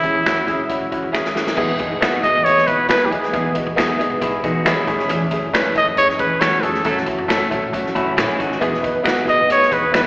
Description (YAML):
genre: uptempo 1960s-style soul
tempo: 136 BPM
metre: 4/4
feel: straight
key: E major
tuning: A4 = 440 Hz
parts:
  - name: warm trumpet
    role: melody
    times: 0.0-10.0 s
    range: E4 to D#5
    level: -16 LUFS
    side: equal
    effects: slapback echo, tape echo
  - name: warm grand piano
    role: accompaniment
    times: 0.0-10.1 s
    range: A3 to A5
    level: -21 LUFS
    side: equal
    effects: slapback echo
  - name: tonewheel organ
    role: sustained chords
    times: 0.0-10.1 s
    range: E3 to B4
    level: -27 LUFS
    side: right 1 dB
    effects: overdrive, slow rotary speaker
  - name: swinging big-band drum kit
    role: drums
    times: 0.0-10.0 s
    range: crash cymbal, hi-hat, kick drum, snare drum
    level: -24 LUFS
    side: equal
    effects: slapback echo
  - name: upright bass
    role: bass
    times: 0.1-10.1 s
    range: B1 to F#3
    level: -29 LUFS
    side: equal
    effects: none
  - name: finger snaps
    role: percussion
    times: 0.3-10.0 s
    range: none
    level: -22 LUFS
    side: right 1 dB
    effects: none
  - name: electric guitar through a small old amp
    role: riff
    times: 4.2-5.1, 8.0-8.8 s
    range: C#4 to G#4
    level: -24 LUFS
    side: left 1 dB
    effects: wide subtle chorus, slapback echo
  - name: warm saxophone section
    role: second line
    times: 6.9-7.0 s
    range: F#3 to A4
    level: -26 LUFS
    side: right 1 dB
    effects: slapback echo
room: light reverb, small room ambience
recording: live gig heard through the venue's PA, recital hall reverb, AM radio sound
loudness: -15 LUFS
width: side -23 dB against mid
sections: 0.0-1.6 A section; 1.6-10.1 B section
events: drum fill 1.1-1.6; band accent 6.9-8.6; grand piano fill 7.7-8.6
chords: 0.0 C#m/E; 1.6 Emaj7; 4.9 Amaj7; 6.9 F#m7; 8.6 Emaj7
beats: 0.26 0.70 1.14 | 1.58 2.02 2.46 2.90 | 3.34 3.78 4.22 4.66 | 5.09 5.54 5.97 6.41 | 6.85 7.29 7.73 8.17 | 8.61 9.05 9.49 9.93